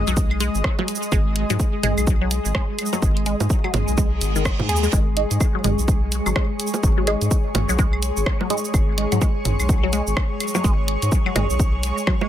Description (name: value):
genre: minimal techno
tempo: 126 BPM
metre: 4/4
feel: swing 60% on 16ths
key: G# minor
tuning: A4 = 440 Hz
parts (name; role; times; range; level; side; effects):
- round analog bass; bass; 0.0-11.9 s; G#1 to G#2; -23 LUFS; equal; tube saturation, sidechain pumping
- granular cloud pad; texture; 0.0-12.3 s; G#3 to D#6; -26 LUFS; left 1 dB; built-in reverb, sidechain pumping
- resonant blip pluck; riff; 0.1-12.3 s; D#3 to G#4; -27 LUFS; left 1 dB; phaser, sidechain pumping, dub echo
- house drum kit; drums; 0.1-12.2 s; hi-hat, rim click, shaker; -28 LUFS; right 2 dB; none
- electronic kick drum; drums; 0.2-12.2 s; none; -20 LUFS; equal; none
- electronic claves, bongos and toms; percussion; 0.3-12.3 s; none; -27 LUFS; right 3 dB; ping-pong delay
- reverse cymbal; sound effects; 4.1-4.9 s; none; -30 LUFS; right 6 dB; none
- filtered dub chord stab; stabs; 5.2-9.1 s; G#3 to D#5; -27 LUFS; right 5 dB; phaser, ping-pong delay
room: light reverb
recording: none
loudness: -18 LUFS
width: side -11 dB against mid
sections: 0.0-12.3 A section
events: reverse cymbal 4.1-4.9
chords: 0.0 G#5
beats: 0.17 0.64 | 1.12 1.60 2.07 2.55 | 3.02 3.50 3.98 4.45 | 4.93 5.41 5.88 6.36 | 6.83 7.31 7.79 8.26 | 8.74 9.21 9.69 10.17 | 10.64 11.12 11.60 12.07